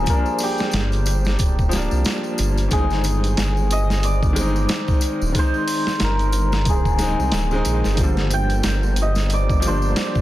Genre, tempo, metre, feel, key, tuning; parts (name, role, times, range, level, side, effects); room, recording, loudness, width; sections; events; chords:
trip hop; 91 BPM; 4/4; swing 59% on 16ths; G phrygian; A4 = 439 Hz
hammered dulcimer; melody; 0.0-10.2 s; G4 to G5; -26 LUFS; equal; vintage 12-bit sampler grit, tape echo
bright upright piano; accompaniment; 0.0-10.2 s; D3 to Eb4; -26 LUFS; left 1 dB; tremolo, tape echo
dark detuned saw bass; bass; 0.0-9.9 s; D1 to C2; -20 LUFS; equal
wind-like tuned noise texture; texture; 0.0-10.2 s; C5; -36 LUFS; right 2 dB
dusty soul sampler-style drum kit; drums; 0.1-10.2 s; hi-hat, kick drum, snare drum; -22 LUFS; equal; vintage 12-bit sampler grit, small room ambience
tambourine; percussion; 0.1-10.2 s; -34 LUFS; left 3 dB
studio reverb; dense, heavily limited modern master; -17 LUFS; side -15 dB against mid
0.0-10.2 A section
0.0 Gm7; 2.7 Ab; 8.0 Gm7